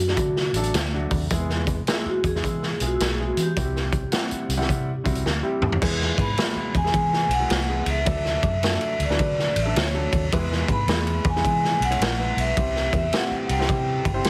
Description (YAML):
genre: uptempo 1960s-style soul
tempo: 107 BPM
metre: 4/4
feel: swing 65% on 8ths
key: unclear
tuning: A4 = 440 Hz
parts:
  - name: vibraphone with medium hard mallets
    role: melody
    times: 0.0-14.2 s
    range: E4 to B5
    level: -29 LUFS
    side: equal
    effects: plate reverb
  - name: vintage muted fingered electric bass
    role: bass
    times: 0.0-14.3 s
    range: G1 to E3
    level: -29 LUFS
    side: equal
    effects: none
  - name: warm grand piano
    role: accompaniment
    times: 0.1-14.3 s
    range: E3 to C6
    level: -32 LUFS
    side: equal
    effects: none
  - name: raw garage drum kit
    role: drums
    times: 0.1-14.3 s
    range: crash cymbal, hi-hat, kick drum, ride cymbal, snare drum, toms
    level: -27 LUFS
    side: equal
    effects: none
room: light reverb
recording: heavily compressed radio sound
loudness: -23 LUFS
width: mono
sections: 0.0-5.8 A section; 5.8-14.3 B section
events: drum fill 5.3-5.8; grand piano fill 14.0-14.3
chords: 0.0 D; 1.3 E; 3.6 C; 5.8 E; 8.1 D; 10.3 E; 12.6 C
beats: 0.18 0.74 | 1.31 1.87 2.44 3.00 | 3.56 4.13 4.69 5.26 | 5.82 6.38 6.95 7.51 | 8.07 8.63 9.20 9.76 | 10.32 10.88 11.44 12.00 | 12.57 13.13 13.69 14.25